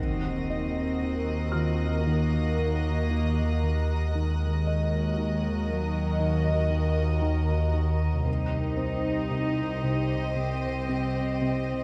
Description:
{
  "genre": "cinematic",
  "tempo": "58 BPM",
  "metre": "4/4",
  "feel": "straight",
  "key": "Eb dorian",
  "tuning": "A4 = 440 Hz",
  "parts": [
    { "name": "clear studio violin section", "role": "melody", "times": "0.0-11.8 s", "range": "Eb5", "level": "-40 LUFS", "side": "equal", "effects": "none" },
    { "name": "dark studio violin section", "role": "second line", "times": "0.0-11.8 s", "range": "Gb4 to C5", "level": "-41 LUFS", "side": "equal", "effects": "none" },
    { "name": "ethereal airy pad", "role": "sustained chords", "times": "0.0-11.8 s", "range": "Bb4 to Bb5", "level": "-40 LUFS", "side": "equal", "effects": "ensemble chorus, built-in reverb, phaser" },
    { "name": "fat analog bass", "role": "riff", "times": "0.0-11.7 s", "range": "C3 to Eb4", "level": "-36 LUFS", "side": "equal", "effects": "none" },
    { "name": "warm studio cello section", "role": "bass", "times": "0.0-11.8 s", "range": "Gb3 to Eb4", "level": "-35 LUFS", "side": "equal", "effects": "none" },
    { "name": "warm studio double bass section", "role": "bass", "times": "0.0-11.8 s", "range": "C2 to Eb2", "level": "-33 LUFS", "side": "equal", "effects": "none" },
    { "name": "analog drone", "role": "drone", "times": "0.0-11.8 s", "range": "C2 to Eb2", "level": "-32 LUFS", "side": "equal", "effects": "chorus" },
    { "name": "impact", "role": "sound effects", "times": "0.0-4.2 s", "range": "none", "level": "-38 LUFS", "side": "equal", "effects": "none" },
    { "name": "warm studio violin section", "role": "texture", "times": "0.0-7.7 s", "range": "Eb6 to Bb6", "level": "-47 LUFS", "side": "equal", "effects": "none" },
    { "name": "felt-muted upright piano", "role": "texture", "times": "1.5-11.8 s", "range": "F4 to F6", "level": "-45 LUFS", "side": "equal", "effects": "none" }
  ],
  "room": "wet scoring stage reverb, RT60 1.8 s",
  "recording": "vinyl crackle",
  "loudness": "-27 LUFS",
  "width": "mono",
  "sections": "0.0-11.8 A section",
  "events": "impact 0.0-4.2",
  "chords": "0.0 Ebm; 8.3 Cm",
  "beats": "1.03 2.07 3.11 | 4.15 5.18 6.21 7.24 | 8.27 9.32 10.37 11.42"
}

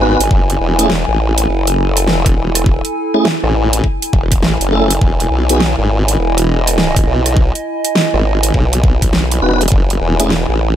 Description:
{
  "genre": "glitch hop",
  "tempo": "102 BPM",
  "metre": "4/4",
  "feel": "swing 63% on 16ths",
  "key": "F# dorian",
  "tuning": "A4 = 440 Hz",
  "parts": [
    { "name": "mellow tonewheel organ", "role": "stabs", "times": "0.0-5.6, 9.4-10.3 s", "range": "A3 to B4", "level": "-18 LUFS", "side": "right 1 dB", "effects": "chorus vibrato, fast rotary speaker, sidechain pumping, ping-pong delay" },
    { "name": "formant-sweep wobble bass", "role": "bass", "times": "0.0-10.8 s", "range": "E1 to B1", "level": "-14 LUFS", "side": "equal", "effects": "chorus, tube saturation" },
    { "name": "warbly tape-like pad", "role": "texture", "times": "0.0-10.8 s", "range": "E4 to G#5", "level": "-20 LUFS", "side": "right 1 dB", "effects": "chorus, built-in reverb, sidechain pumping" },
    { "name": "dubstep drum kit", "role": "drums", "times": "0.2-10.5 s", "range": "hi-hat, rim click, snare drum", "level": "-17 LUFS", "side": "right 1 dB", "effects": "overdrive" },
    { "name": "electronic kick drum", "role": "drums", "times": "0.3-9.9 s", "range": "none", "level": "-13 LUFS", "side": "equal", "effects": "overdrive" }
  ],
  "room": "light reverb, digital ambience",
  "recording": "none",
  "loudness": "-11 LUFS",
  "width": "side -10 dB against mid",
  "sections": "0.0-10.8 A section",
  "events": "none",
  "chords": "0.3 F#m9; 5.0 Emaj7; 9.7 F#m9",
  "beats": "| 0.31 0.90 1.49 2.07 | 2.66 3.25 3.84 4.43 | 5.01 5.60 6.19 6.78 | 7.37 7.96 8.54 9.13 | 9.72 10.31"
}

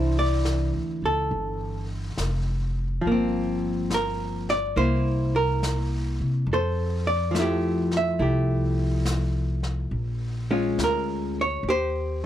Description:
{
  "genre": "jazz",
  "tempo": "70 BPM",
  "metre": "4/4",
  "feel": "swing 68% on 8ths",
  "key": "C major",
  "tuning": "A4 = 438 Hz",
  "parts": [
    { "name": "archtop guitar, miked and amplified", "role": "accompaniment", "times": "0.0-12.2 s", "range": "E3 to E5", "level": "-25 LUFS", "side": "equal", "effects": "none" },
    { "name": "upright bass", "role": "bass", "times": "0.0-12.3 s", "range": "F1 to C3", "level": "-26 LUFS", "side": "equal", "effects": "none" },
    { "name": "vintage brush drum kit", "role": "drums", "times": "0.5-12.3 s", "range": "brushed snare drum, hi-hat, snare drum", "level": "-36 LUFS", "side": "left 2 dB", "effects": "none" }
  ],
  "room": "little or no reverb",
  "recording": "dark, warm production",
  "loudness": "-23 LUFS",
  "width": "side -11 dB against mid",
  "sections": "0.0-12.3 A section",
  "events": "none",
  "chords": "0.0 Cadd9; 3.0 Gm7; 4.8 C7; 6.5 Fmaj9; 9.9 Bbm7; 11.7 Eb",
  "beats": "0.45 1.31 2.18 | 3.05 3.91 4.77 5.62 | 6.48 7.34 8.20 9.06 | 9.92 10.79 11.65"
}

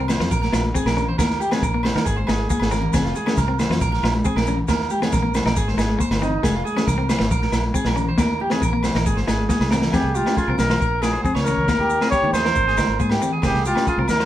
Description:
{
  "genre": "highlife guitar band",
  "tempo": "137 BPM",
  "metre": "4/4",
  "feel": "straight",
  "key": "F minor",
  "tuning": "A4 = 443 Hz",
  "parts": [
    { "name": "clean electric guitar", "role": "accompaniment", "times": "0.0-14.3 s", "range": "Ab3 to F4", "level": "-28 LUFS", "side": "left 4 dB", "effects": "vibrato effect" },
    { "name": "electric guitar at the edge of break-up", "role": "arpeggios", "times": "0.0-14.3 s", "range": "Eb4 to Db5", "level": "-26 LUFS", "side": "right 2 dB", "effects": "none" },
    { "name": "fingered electric bass", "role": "bass", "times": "0.0-14.3 s", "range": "F1 to Eb3", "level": "-24 LUFS", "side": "equal", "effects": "none" },
    { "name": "crunchy breakbeat drum kit", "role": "drums", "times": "0.1-14.3 s", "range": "kick drum, snare drum", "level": "-23 LUFS", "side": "equal", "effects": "none" },
    { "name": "agogo bells", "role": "percussion", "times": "0.1-14.2 s", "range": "none", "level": "-32 LUFS", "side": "left 1 dB", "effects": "none" },
    { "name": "congas", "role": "percussion", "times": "0.1-14.2 s", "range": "none", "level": "-29 LUFS", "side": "left 1 dB", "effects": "none" },
    { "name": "maracas", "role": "percussion", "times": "0.1-14.2 s", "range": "none", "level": "-37 LUFS", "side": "left 3 dB", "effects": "none" },
    { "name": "mellow trumpet", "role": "melody", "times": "9.9-14.3 s", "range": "F4 to Db5", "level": "-21 LUFS", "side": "equal", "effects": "none" }
  ],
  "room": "wet studio ambience, RT60 0.5 s",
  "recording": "band playing live in one room",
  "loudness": "-18 LUFS",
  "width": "side -12 dB against mid",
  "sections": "0.0-9.9 A section; 9.9-14.3 B section",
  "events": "drum fill 2.4-2.9, 9.5-9.9",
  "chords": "0.3 Bbm; 1.2 Eb; 2.1 Ab; 2.9 Fm; 3.8 Bbm; 4.7 Eb5; 5.6 Ab; 6.4 Fm; 7.3 Bbm; 8.2 Eb5; 9.1 Ab; 9.9 Fm; 10.8 Bbm; 11.7 Eb; 12.6 Ab; 13.4 Fm",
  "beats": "0.31 0.75 | 1.19 1.62 2.06 2.50 | 2.94 3.37 3.81 4.25 | 4.69 5.12 5.56 6.00 | 6.43 6.87 7.31 7.75 | 8.18 8.62 9.06 9.49 | 9.93 10.37 10.80 11.24 | 11.68 12.12 12.55 12.99 | 13.43 13.87"
}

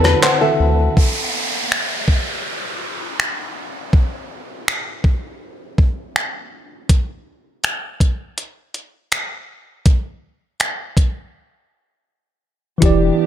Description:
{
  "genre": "contemporary R&B",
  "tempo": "81 BPM",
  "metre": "4/4",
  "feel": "straight",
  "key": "unclear",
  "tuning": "A4 = 440 Hz",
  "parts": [
    { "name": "mellow tine electric piano", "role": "accompaniment", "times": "0.0-1.0, 12.8-13.3 s", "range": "D3 to A5", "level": "-17 LUFS", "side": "right 1 dB", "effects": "medium stereo tremolo" },
    { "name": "dark studio string section", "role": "sustained chords", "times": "0.0-0.9, 12.8-13.3 s", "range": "D3 to B4", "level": "-25 LUFS", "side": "left 1 dB", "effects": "none" },
    { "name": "nylon-string guitar", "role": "arpeggios", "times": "0.0-0.9 s", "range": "A4 to C5", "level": "-20 LUFS", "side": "left 6 dB", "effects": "ping-pong delay" },
    { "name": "round analog bass", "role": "bass", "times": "0.0-0.9, 12.8-13.1 s", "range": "E1 to E2", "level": "-17 LUFS", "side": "equal", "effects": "none" },
    { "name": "gated 80s digital drum machine", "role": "drums", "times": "0.1-13.0 s", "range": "finger snaps, handclaps, hi-hat, kick drum, rim click", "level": "-16 LUFS", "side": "equal", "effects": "gated reverb" },
    { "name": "downlifter", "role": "sound effects", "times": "1.0-6.9 s", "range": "none", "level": "-25 LUFS", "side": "right 1 dB", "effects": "none" }
  ],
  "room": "digital ambience",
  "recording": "none",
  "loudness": "-17 LUFS",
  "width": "side -10 dB against mid",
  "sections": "1.0-13.3 A section",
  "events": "tine electric piano fill 0.0-1.0; break 11.3-12.8",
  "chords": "0.0 D13; 1.0 N.C.",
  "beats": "0.23 | 0.97 1.71 2.45 3.19 | 3.93 4.67 5.41 6.15 | 6.89 7.63 8.38 9.12 | 9.86 10.60 11.34 12.08 | 12.82"
}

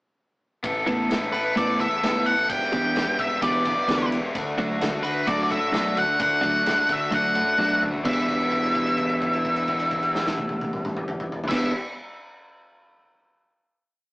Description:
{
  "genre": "indie rock",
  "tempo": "129 BPM",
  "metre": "4/4",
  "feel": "straight",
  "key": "E minor",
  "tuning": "A4 = 441 Hz",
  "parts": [
    { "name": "cranked stack guitar", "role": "riff", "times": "0.6-11.7 s", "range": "G3 to A4", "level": "-28 LUFS", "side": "left 1 dB", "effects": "overdrive" },
    { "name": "growling picked electric bass", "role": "bass", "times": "0.6-11.7 s", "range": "E1 to A2", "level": "-35 LUFS", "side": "equal", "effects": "overdrive" },
    { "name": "loose indie drum kit", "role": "drums", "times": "0.6-11.6 s", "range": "crash cymbal, kick drum, ride cymbal, snare drum, toms", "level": "-31 LUFS", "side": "equal", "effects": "none" },
    { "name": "twelve-string electric guitar", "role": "riff", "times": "0.9-11.7 s", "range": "E3 to A4", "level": "-27 LUFS", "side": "right 1 dB", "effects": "none" },
    { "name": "octave-fuzz lead guitar", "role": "melody", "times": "1.3-11.7 s", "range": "B4 to G5", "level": "-24 LUFS", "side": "equal", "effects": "distortion, analog delay" }
  ],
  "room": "moderate stone room reverb, RT60 0.9 s",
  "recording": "rough rehearsal-room recording, small speaker sound",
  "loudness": "-21 LUFS",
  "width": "side -23 dB against mid",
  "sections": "0.6-8.1 pre-chorus; 8.1-11.8 final chord",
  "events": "drum fill 7.6-8.1; held note 8.1-11.5",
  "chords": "0.6 Asus2; 2.5 Em7; 4.3 D; 8.1 Em7",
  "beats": "| 0.63 1.10 1.56 2.03 | 2.50 2.96 3.42 3.88 | 4.35 4.81 5.27 5.74 | 6.20 6.66 7.12 7.59 | 8.05 8.52 8.98 9.45 | 9.92 10.38 10.85 11.32"
}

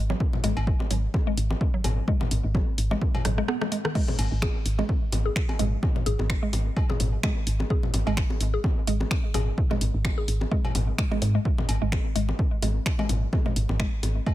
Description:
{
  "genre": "minimal techno",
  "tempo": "128 BPM",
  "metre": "4/4",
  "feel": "swing 56% on 16ths",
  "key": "unclear",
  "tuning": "A4 = 440 Hz",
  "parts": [
    { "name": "woody FM bass", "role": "bass", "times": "0.0-14.2 s", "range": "G#1 to G#2", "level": "-26 LUFS", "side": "equal", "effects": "sidechain pumping" },
    { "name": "mallet-like synth pluck", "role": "riff", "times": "0.1-14.3 s", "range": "D#3 to G#4", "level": "-32 LUFS", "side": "equal", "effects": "chorus, sidechain pumping, dub echo" },
    { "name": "bongos, congas and cowbell", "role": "percussion", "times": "0.1-14.3 s", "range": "none", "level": "-33 LUFS", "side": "left 3 dB", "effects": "dub echo" },
    { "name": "electronic kick drum", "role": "drums", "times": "0.2-14.3 s", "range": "none", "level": "-26 LUFS", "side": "equal", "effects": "none" },
    { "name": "techno drum kit", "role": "drums", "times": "0.4-14.1 s", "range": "crash cymbal, finger snaps, hi-hat, rim click", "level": "-32 LUFS", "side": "right 1 dB", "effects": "overdrive" }
  ],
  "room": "little or no reverb",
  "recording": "none",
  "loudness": "-23 LUFS",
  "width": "side -15 dB against mid",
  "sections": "0.0-14.3 A section",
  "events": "drum fill 3.2-4.0",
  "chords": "none",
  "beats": "| 0.20 0.67 1.14 1.61 | 2.08 2.55 3.02 3.48 | 3.95 4.42 4.89 5.36 | 5.83 6.30 6.76 7.23 | 7.70 8.17 8.64 9.11 | 9.58 10.05 10.52 10.98 | 11.45 11.92 12.39 12.86 | 13.33 13.80 14.27"
}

